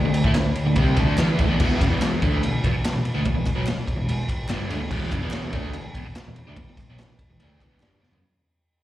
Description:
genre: garage rock duo or trio.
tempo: 145 BPM.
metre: 4/4.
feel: straight.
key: E minor.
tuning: A4 = 440 Hz.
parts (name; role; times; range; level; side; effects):
crunchy overdriven guitar; riff; 0.0-8.2 s; E2 to E4; -24 LUFS; equal; harmonic tremolo, slapback echo.
hollow-body short-scale picked electric bass; bass; 0.0-8.2 s; E1 to A2; -27 LUFS; equal; overdrive.
raw garage drum kit; drums; 0.1-8.2 s; crash cymbal, kick drum, ride cymbal, snare drum, toms; -25 LUFS; equal; none.
group handclap; percussion; 0.4-7.9 s; none; -40 LUFS; equal; slapback echo.
room: moderate club reverb, RT60 0.8 s.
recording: live gig heard through the venue's PA, recital hall reverb.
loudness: -20 LUFS.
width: side -14 dB against mid.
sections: 0.0-1.6 A section; 1.6-8.2 B section.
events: fade-out 1.6-8.2; drum fill 8.0.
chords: 0.0 D5; 1.6 Em.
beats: 0.36 0.77 1.19 | 1.60 2.01 2.43 2.84 | 3.26 3.67 4.08 4.50 | 4.91 5.33 5.74 6.16 | 6.57 6.99 7.40 7.82.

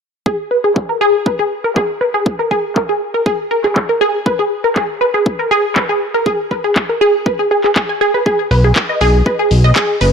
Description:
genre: progressive house.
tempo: 120 BPM.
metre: 4/4.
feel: straight.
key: G# minor.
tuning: A4 = 440 Hz.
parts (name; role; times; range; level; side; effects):
wide unison pluck; arpeggios; 0.3-10.1 s; G#4 to G#5; -14 LUFS; equal; phaser, sidechain pumping, ping-pong delay.
electronic kick drum; drums; 0.3-9.9 s; none; -18 LUFS; equal; overdrive, high-pass filter on kick.
house drum kit; drums; 0.8-10.1 s; handclaps, hi-hat; -20 LUFS; left 1 dB; overdrive, low-pass filter on snare, low-pass filter on hats.
fat analog bass; bass; 8.5-10.1 s; F#1 to B1; -10 LUFS; equal; sidechain pumping.
room: light reverb, digital ambience.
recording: none.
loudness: -12 LUFS.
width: side -6 dB against mid.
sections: 0.3-10.1 A section.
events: filter sweep on drum 0.3-10.1.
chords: 0.3 G#madd9; 2.3 G#sus2; 8.3 B5.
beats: | 0.26 0.76 1.26 1.76 | 2.26 2.76 3.26 3.76 | 4.26 4.76 5.26 5.76 | 6.26 6.76 7.26 7.76 | 8.26 8.76 9.26 9.76.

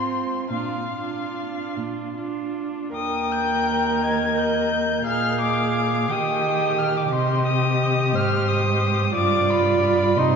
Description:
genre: classical, slow romantic movement for string quartet.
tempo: 46-61 BPM (dotted quarters).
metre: 6/8.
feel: rubato.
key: Eb major.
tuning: A4 = 440 Hz.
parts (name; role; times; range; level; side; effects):
muted violin; melody; 0.0-10.4 s; F5 to Ab6; -26 LUFS; left 5 dB; none.
muted violin; second line; 0.0-10.4 s; F4 to G5; -27 LUFS; left 1 dB; none.
muted viola; accompaniment; 0.0-10.4 s; C4 to Bb4; -26 LUFS; right 3 dB; none.
muted cello; bass; 0.0-10.4 s; Eb2 to Eb3; -25 LUFS; right 2 dB; none.
room: wet cathedral reverb, RT60 5.1 s.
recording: recorded in a church or concert hall, nothing above 7.5 kHz.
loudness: -20 LUFS.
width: side -6 dB against mid.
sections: 0.0-2.9 A section; 2.9-10.4 B section.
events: none.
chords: 0.0 Fm/Ab; 0.5 Bb; 2.9 Eb; 5.1 Bb7; 6.1 Eb; 7.1 Cm; 9.2 G7.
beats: | 0.51 1.77 | 2.95 4.03 | 5.07 6.11 | 7.12 8.15 | 9.15 10.18.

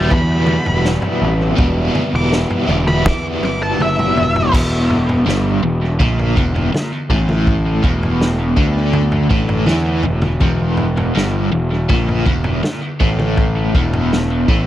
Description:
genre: psychedelic rock.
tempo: 81 BPM.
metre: 4/4.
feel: straight.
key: E minor.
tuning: A4 = 436 Hz.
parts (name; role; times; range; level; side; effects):
octave-fuzz lead guitar; melody; 0.0-4.5 s; E5 to D6; -21 LUFS; equal; distortion, analog delay.
biting overdriven guitar; riff; 0.0-14.7 s; E2 to E4; -19 LUFS; equal; tremolo, analog delay.
fuzz picked electric bass; bass; 0.0-14.7 s; E1 to E2; -18 LUFS; equal; overdrive.
vintage drum kit; drums; 0.1-14.7 s; crash cymbal, kick drum, snare drum, toms; -19 LUFS; equal; analog delay.
room: small room reverb.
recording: echo-heavy mix.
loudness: -14 LUFS.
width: side -13 dB against mid.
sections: 0.0-4.5 A section; 4.5-14.7 B section.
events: lead electric guitar solo 0.0-4.5; drum fill 3.1-4.5.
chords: 0.0 Em.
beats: 0.12 0.85 | 1.59 2.32 3.06 3.79 | 4.53 5.26 6.00 6.74 | 7.47 8.21 8.95 9.69 | 10.42 11.16 11.90 12.64 | 13.38 14.12.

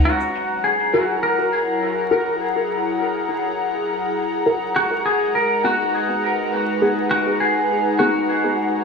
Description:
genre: ambient.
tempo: 102 BPM.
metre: 4/4.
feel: swing 56% on 16ths.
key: unclear.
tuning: A4 = 441 Hz.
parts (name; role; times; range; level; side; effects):
airy breathy pad; sustained chords; 0.0-8.8 s; F#3 to A#5; -22 LUFS; left 2 dB; chorus.
clean lap steel guitar; melody; 0.1-8.8 s; F#4 to A#4; -21 LUFS; equal; dub echo.
filtered dub chord stab; stabs; 0.9-8.1 s; B3 to A#4; -24 LUFS; left 1 dB; phaser, lush chorus, dub echo.
room: wet echo chamber reverb, RT60 2.0 s, digital ambience.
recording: vinyl crackle, studio ambience.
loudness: -18 LUFS.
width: side -5 dB against mid.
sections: 0.1-8.8 A section.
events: none.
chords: 0.1 F#7; 4.8 G#m7.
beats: | 0.05 0.64 1.23 1.82 | 2.40 2.99 3.58 4.17 | 4.76 5.35 5.93 6.52 | 7.11 7.70 8.29.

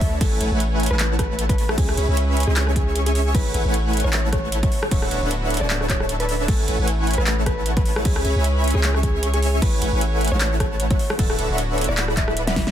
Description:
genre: future bass.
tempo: 153 BPM.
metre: 4/4.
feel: swing 55% on 16ths, half-time.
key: A major.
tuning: A4 = 436 Hz.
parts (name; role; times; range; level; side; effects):
mellow electric guitar; melody; 0.0-12.7 s; G#4 to E5; -29 LUFS; equal; sidechain pumping, ping-pong delay.
warm studio string section; sustained chords; 0.0-12.7 s; C#3 to C#5; -34 LUFS; left 1 dB; sidechain pumping.
dense compressed supersaw; riff; 0.0-12.7 s; A3 to C#6; -25 LUFS; equal; sidechain pumping.
long sustained 808-style bass; bass; 0.0-12.7 s; D1 to D2; -22 LUFS; equal; sidechain pumping.
electronic kick drum; drums; 0.0-12.6 s; none; -22 LUFS; equal; overdrive.
pop drum kit; drums; 0.0-12.7 s; crash cymbal, handclaps, hi-hat, rim click, snare drum; -26 LUFS; equal; overdrive.
room: digital ambience.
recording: dense, heavily limited modern master.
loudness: -18 LUFS.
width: side -10 dB against mid.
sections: 0.0-12.7 A section.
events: drum fill 12.5.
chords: 0.2 Amaj13; 1.8 C#m7; 3.3 Amaj13; 4.7 Dmaj13; 6.5 Amaj13; 8.1 C#m7; 9.6 Amaj13; 11.0 Dmaj13; 12.0 E7sus4.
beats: | 0.21 0.60 0.99 1.39 | 1.78 2.17 2.56 2.96 | 3.35 3.74 4.13 4.52 | 4.92 5.31 5.70 6.09 | 6.48 6.88 7.27 7.66 | 8.05 8.45 8.84 9.23 | 9.62 10.01 10.41 10.80 | 11.19 11.58 11.97 12.37.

